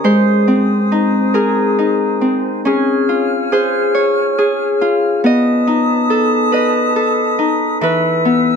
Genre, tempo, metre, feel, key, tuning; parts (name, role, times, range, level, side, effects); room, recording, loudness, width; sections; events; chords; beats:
children's music, lullaby; 47 BPM (dotted quarters); 6/8; straight; A4 = 438 Hz
Celtic harp; melody; 0.0-8.6 s; E3 to D#5; -13 LUFS; left 1 dB
small flute group; sustained chords; 0.0-8.6 s; B4 to F6; -20 LUFS; left 2 dB
light reverb; close, detailed microphones; -12 LUFS; side -6 dB against mid
0.0-2.7 A section; 2.7-8.6 B section
0.0 Ab; 2.7 Db; 5.2 B7; 7.8 E
| 0.04 1.35 | 2.65 3.96 | 5.24 6.52 | 7.81